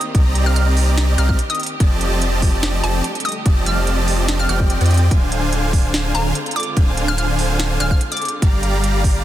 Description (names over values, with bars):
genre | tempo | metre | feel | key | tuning
future bass | 145 BPM | 4/4 | half-time | unclear | A4 = 440 Hz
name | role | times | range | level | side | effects
hollow square pluck | melody | 0.0-8.5 s | A5 to F6 | -26 LUFS | left 1 dB | chorus, sidechain pumping, ping-pong delay
rich symphonic string section | sustained chords | 0.0-9.2 s | D3 to G4 | -30 LUFS | right 1 dB | sidechain pumping
trap drum kit | drums | 0.0-9.1 s | hi-hat, snare drum | -25 LUFS | right 2 dB | small room ambience
supersaw chords | riff | 0.1-9.2 s | D3 to Bb5 | -22 LUFS | right 1 dB | sidechain pumping
saturated sub bass | bass | 0.1-9.2 s | D1 to F2 | -18 LUFS | equal | sidechain pumping
electronic kick drum | drums | 0.1-9.1 s | none | -15 LUFS | equal | small room ambience
room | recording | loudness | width
digital ambience | dense, heavily limited modern master | -15 LUFS | side -13 dB against mid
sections
0.0-9.2 A section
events
none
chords
0.0 Cm9; 1.8 F13; 5.1 Dm7b5; 8.4 Gm7